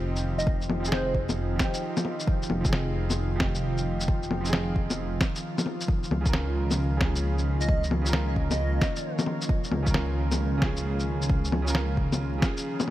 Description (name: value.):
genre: future garage.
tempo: 133 BPM.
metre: 4/4.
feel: swing 66% on 16ths.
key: unclear.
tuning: A4 = 440 Hz.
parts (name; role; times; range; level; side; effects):
bright upright piano; accompaniment; 0.0-12.9 s; Db3 to Bb4; -35 LUFS; right 3 dB; sidechain pumping, dub echo.
airy breathy pad; sustained chords; 0.0-12.9 s; Eb3 to F4; -34 LUFS; equal; chorus, vintage 12-bit sampler grit, sidechain pumping.
dark detuned saw bass; bass; 0.0-12.4 s; F1 to Db2; -28 LUFS; equal; sidechain pumping.
electronic shaker, bongos and snare drum; drums; 0.2-12.9 s; none; -29 LUFS; left 1 dB; none.
plucky unison lead; melody; 0.4-1.3, 7.6-9.1 s; C5 to Eb5; -35 LUFS; equal; tape echo.
electronic kick drum; drums; 0.5-12.5 s; none; -27 LUFS; equal; overdrive.
room: light reverb, digital ambience.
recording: vinyl crackle.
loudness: -24 LUFS.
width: side -14 dB against mid.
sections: 0.0-12.9 A section.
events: break 12.6.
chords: 0.0 Fm7; 5.9 Db6.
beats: 0.02 | 0.47 0.92 1.37 1.82 | 2.27 2.72 3.17 3.62 | 4.08 4.53 4.98 5.43 | 5.88 6.33 6.78 7.23 | 7.68 8.14 8.59 9.04 | 9.49 9.94 10.39 10.84 | 11.29 11.75 12.20 12.65.